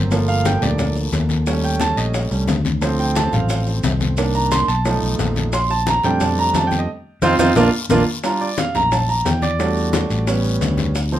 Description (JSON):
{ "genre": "Afro-Cuban jazz", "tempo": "177 BPM", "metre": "4/4", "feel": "straight", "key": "Bb major", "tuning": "A4 = 439 Hz", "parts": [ { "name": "warm baby grand piano", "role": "accompaniment", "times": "0.0-11.2 s", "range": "Eb3 to C6", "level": "-19 LUFS", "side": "right 3 dB", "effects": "none" }, { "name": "fingered electric bass", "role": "bass", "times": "0.0-11.2 s", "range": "G1 to F2", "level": "-20 LUFS", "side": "left 1 dB", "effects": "none" }, { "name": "bongos", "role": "percussion", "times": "0.1-11.2 s", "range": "none", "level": "-28 LUFS", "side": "left 4 dB", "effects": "none" }, { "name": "congas", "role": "percussion", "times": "0.1-11.2 s", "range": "none", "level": "-25 LUFS", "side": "left 3 dB", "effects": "none" }, { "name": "guiro", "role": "percussion", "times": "0.1-11.2 s", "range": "none", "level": "-31 LUFS", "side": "left 5 dB", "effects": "none" }, { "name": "maracas", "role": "percussion", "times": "0.1-11.2 s", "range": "none", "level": "-33 LUFS", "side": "right 4 dB", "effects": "none" } ], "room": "moderate small room reverb, RT60 0.5 s", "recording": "minimal, uncompressed stereo recording", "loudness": "-16 LUFS", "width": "side -12 dB against mid", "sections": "0.0-8.2 A section; 8.2-11.2 A section", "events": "grand piano solo 0.0-11.2; band accent 6.9-8.2", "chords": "0.1 Gm9; 1.5 Eb7#11; 2.8 Dm7; 4.2 Cm7; 4.9 B7#11; 5.5 Bbmaj13; 6.9 F5; 7.6 Bb; 8.2 Bb(#11); 9.6 Em11; 10.3 A7", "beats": "| 0.11 0.45 0.79 1.13 | 1.47 1.81 2.15 2.48 | 2.82 3.16 3.50 3.84 | 4.18 4.52 4.86 5.19 | 5.53 5.87 6.21 6.55 | 6.88 7.22 7.56 7.90 | 8.24 8.58 8.92 9.26 | 9.60 9.94 10.28 10.61 | 10.95" }